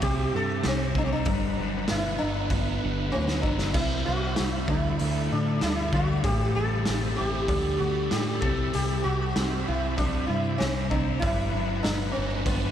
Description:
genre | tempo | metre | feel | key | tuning
psychedelic rock | 96 BPM | 4/4 | straight | C lydian | A4 = 440 Hz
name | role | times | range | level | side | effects
sitar | melody | 0.0-12.7 s | B3 to A4 | -29 LUFS | equal | ping-pong delay
bright tonewheel organ | sustained chords | 0.0-12.7 s | A4 to B5 | -38 LUFS | right 2 dB | overdrive, chorus vibrato, fast rotary speaker
fuzz guitar | riff | 0.0-12.7 s | G2 to E4 | -30 LUFS | left 1 dB | distortion, phaser
deep dub picked electric bass | bass | 0.0-12.7 s | G1 to A2 | -30 LUFS | equal | none
raw garage drum kit | drums | 0.0-12.6 s | crash cymbal, hi-hat, kick drum, snare drum, toms | -30 LUFS | equal | none
room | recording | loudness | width
moderate huge ambient reverb, RT60 5.1 s | dreamy mix soaked in reverb | -24 LUFS | side -10 dB against mid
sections
0.0-12.7 A section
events
drum fill 3.1-3.7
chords
0.0 C; 1.3 Gmaj7; 3.7 C; 4.7 Dsus4; 6.2 Am7; 7.5 Dsus4; 8.4 C; 11.2 Gmaj7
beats
0.01 0.64 | 1.26 1.88 2.50 3.12 | 3.75 4.37 4.99 5.61 | 6.23 6.86 7.48 8.10 | 8.72 9.34 9.96 10.58 | 11.21 11.83 12.45

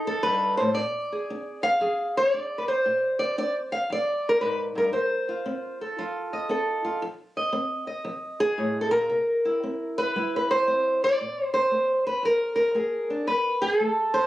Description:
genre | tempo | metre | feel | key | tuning
acoustic country blues, solo or duo | 115 BPM | 4/4 | swing 65% on 8ths | F mixolydian | A4 = 440 Hz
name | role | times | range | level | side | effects
fingerpicked old ladder-braced acoustic guitar | solo | 0.0-14.3 s | F2 to F5 | -23 LUFS | equal | none
room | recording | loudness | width
light reverb | recorded on a phone in the room, studio ambience, compression | -23 LUFS | side -15 dB against mid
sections
0.0-14.3 A section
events
none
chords
0.0 F7; 0.8 Bb7; 4.9 F7; 9.1 C7; 11.2 Bb7; 13.3 F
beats
0.26 | 0.78 1.30 1.82 2.34 | 2.86 3.38 3.90 4.42 | 4.94 5.46 5.98 6.50 | 7.02 7.54 8.06 8.58 | 9.10 9.62 10.15 10.67 | 11.19 11.71 12.23 12.75 | 13.27 13.79

